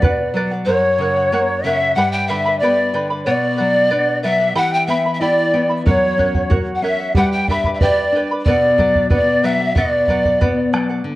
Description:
andean folk, Andean ensemble; 92 BPM; 2/4; straight; B minor; A4 = 440 Hz
breathy bright polished pan flute; melody; 0.0-10.7 s; C#5 to G5; -18 LUFS; equal; tape echo
bright reedy large quena; second line; 0.0-10.7 s; C#5 to G5; -21 LUFS; left 1 dB
charango; accompaniment; 0.0-11.1 s; E4 to B5; -24 LUFS; right 2 dB
nylon-string guitar; accompaniment; 0.0-11.2 s; F#2 to B4; -21 LUFS; left 2 dB
bombo; percussion; 0.0-0.2, 5.9-10.9 s; -19 LUFS; right 1 dB
moderate spring reverb, RT60 1.6 s, small room ambience; cassette tape; -14 LUFS; side -17 dB against mid
0.7-11.1 A section
0.0 Bm; 0.7 F#; 2.0 G; 3.3 Bm; 4.6 Em; 5.9 F#; 7.2 G; 8.5 Bm
0.01 | 0.66 1.31 | 1.96 2.61 | 3.26 3.91 | 4.56 5.21 | 5.86 6.51 | 7.16 7.80 | 8.45 9.10 | 9.75 10.40 | 11.05

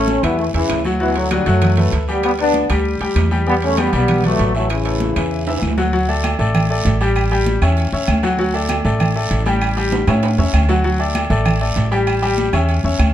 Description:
latin, salsa; 195 BPM; 4/4; straight; D major; A4 = 440 Hz
mellow trombone section; melody; 0.0-5.6 s; B2 to D4; -19 LUFS; left 1 dB; plate reverb
bright upright piano; accompaniment; 0.0-13.1 s; E3 to G5; -20 LUFS; left 3 dB
upright bass; bass; 0.0-13.1 s; A1 to A2; -18 LUFS; right 1 dB
congas; percussion; 0.1-13.1 s; -24 LUFS; equal
guiro; percussion; 0.1-13.1 s; -32 LUFS; right 5 dB
claves; percussion; 0.2-13.1 s; -33 LUFS; left 3 dB
timbales and agogo bells; percussion; 0.2-13.1 s; -26 LUFS; right 7 dB
light reverb; dark, warm production; -14 LUFS; side -11 dB against mid
0.0-5.9 A section; 5.9-13.1 B section
drum fill 5.5-5.9, 9.9-10.8
0.0 A; 1.0 D6; 2.2 G6/D; 3.5 Em7; 4.7 A; 5.9 D; 7.2 A7; 8.4 D; 9.6 A7; 10.8 D; 12.1 A7
0.08 0.39 0.70 | 1.00 1.31 1.62 1.93 | 2.24 2.54 2.85 3.16 | 3.47 3.78 4.08 4.39 | 4.70 5.01 5.32 5.62 | 5.93 6.24 6.54 6.85 | 7.16 7.47 7.77 8.08 | 8.39 8.70 9.00 9.31 | 9.62 9.92 10.23 10.54 | 10.84 11.15 11.46 11.77 | 12.07 12.38 12.69 12.99

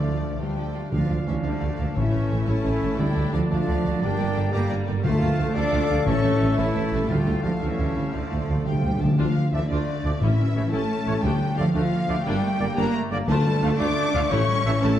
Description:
cinematic, heroic adventure film score; 117 BPM (dotted quarters); 6/8; straight; D harmonic minor; A4 = 440 Hz
warm symphonic violin section; melody; 0.0-15.0 s; C#5 to D6; -36 LUFS; left 3 dB
warm clarinet; second line; 0.0-15.0 s; G3 to F5; -35 LUFS; left 1 dB
warm symphonic violin section; second line; 0.0-15.0 s; D5 to D6; -39 LUFS; left 2 dB
clear symphonic viola section; accompaniment; 0.0-15.0 s; E3 to A4; -36 LUFS; equal
bright trombone section; sustained chords; 0.0-14.7 s; D3 to D4; -35 LUFS; right 2 dB
mellow French horn section; sustained chords; 0.0-15.0 s; D4 to D5; -31 LUFS; left 5 dB
concert harp; arpeggios; 0.0-15.0 s; G2 to A5; -32 LUFS; left 8 dB
mellow trumpet section; stabs; 0.0-14.7 s; A3 to F5; -33 LUFS; right 1 dB
rich symphonic cello section; bass; 0.0-15.0 s; D3 to D4; -28 LUFS; right 2 dB
warm chamber double bass section; bass; 0.0-14.9 s; A1 to G2; -29 LUFS; right 2 dB
timpani; percussion; 0.0-13.8 s; A2 to D3; -27 LUFS; left 1 dB
silver concert flute; second line; 0.9-15.0 s; D5 to D6; -37 LUFS; left 2 dB
mellow tuba; bass; 0.9-14.9 s; G1 to D2; -30 LUFS; right 3 dB
wet recital hall reverb, RT60 1.5 s; dark, warm production; -21 LUFS; side -11 dB against mid
0.9-9.2 A section; 9.2-15.0 B section
timpani fill 8.1-9.2
0.0 Dm; 2.0 A; 3.0 Dm; 4.0 Gm; 5.0 Dm; 6.1 A; 7.1 Dm; 10.2 A; 11.2 Dm; 12.3 Gm; 13.3 Dm; 14.3 A
0.40 | 0.92 1.44 | 1.96 2.48 | 2.99 3.50 | 4.02 4.53 | 5.04 5.55 | 6.07 6.58 | 7.09 7.61 | 8.13 8.66 | 9.19 9.70 | 10.22 10.73 | 11.24 11.75 | 12.26 12.77 | 13.29 13.80 | 14.31 14.83

